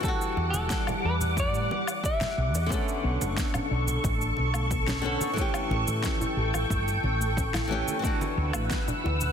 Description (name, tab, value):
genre	sunset chillout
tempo	90 BPM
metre	4/4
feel	straight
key	B minor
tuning	A4 = 440 Hz
part	semi-hollow electric guitar	melody	0.0-2.7 s	A4 to E5	-33 LUFS	left 1 dB	tape echo, shimmer reverb
part	flamenco guitar	accompaniment	0.0-9.3 s	D3 to A4	-33 LUFS	left 1 dB	auto-pan, tape echo, shimmer reverb
part	soft string machine	sustained chords	0.0-9.3 s	G3 to E6	-31 LUFS	equal	phaser, ensemble chorus, shimmer reverb
part	electronic kick drum	drums	0.0-8.8 s	none	-31 LUFS	equal	overdrive
part	electronic shaker, snare drum and woodblock	drums	0.0-9.3 s	none	-36 LUFS	left 1 dB	overdrive
part	congas	percussion	0.0-9.3 s	none	-38 LUFS	right 2 dB	none
part	woody fretless electric bass	bass	0.4-9.3 s	E1 to A2	-28 LUFS	equal	none
part	soft round pluck	arpeggios	2.7-9.2 s	A3 to G4	-38 LUFS	left 4 dB	chorus, tape echo, shimmer reverb
room	moderate lush hall reverb, RT60 2.3 s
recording	dense, heavily limited modern master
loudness	-25 LUFS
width	side -8 dB against mid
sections	0.0-9.3 A section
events	none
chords	0.0 Em9; 2.7 Bm9; 5.4 A7; 8.0 D69